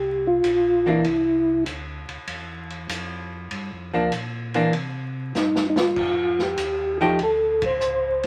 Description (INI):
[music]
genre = soul jazz organ trio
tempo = 98 BPM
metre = 4/4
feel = swing 69% on 8ths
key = C mixolydian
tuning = A4 = 441 Hz
[part]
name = percussive tonewheel organ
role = melody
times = 0.0-1.6, 5.4-8.3 s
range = Eb4 to C5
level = -23 LUFS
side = equal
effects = slow rotary speaker, chorus vibrato
[part]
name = mellow tonewheel organ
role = bass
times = 0.0-8.3 s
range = Bb1 to C3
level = -37 LUFS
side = equal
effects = slow rotary speaker
[part]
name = vintage drum kit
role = drums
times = 0.4-8.3 s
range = crash cymbal, hi-hat, kick drum, ride cymbal, snare drum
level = -34 LUFS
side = equal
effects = none
[part]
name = archtop guitar, miked and amplified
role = accompaniment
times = 0.9-7.2 s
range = E3 to G4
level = -23 LUFS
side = equal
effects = none
[sound]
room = moderate small room reverb, RT60 0.5 s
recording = vinyl crackle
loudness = -23 LUFS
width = mono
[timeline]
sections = 0.0-8.3 A section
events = drum fill 5.3-6.0; band accent 7.5-7.8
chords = 0.0 Fsus2; 1.1 Cadd9; 3.5 Gm7; 4.7 C5; 6.0 F7sus2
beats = 0.44 | 1.05 1.67 2.28 2.89 | 3.51 4.12 4.74 5.35 | 5.96 6.58 7.19 7.81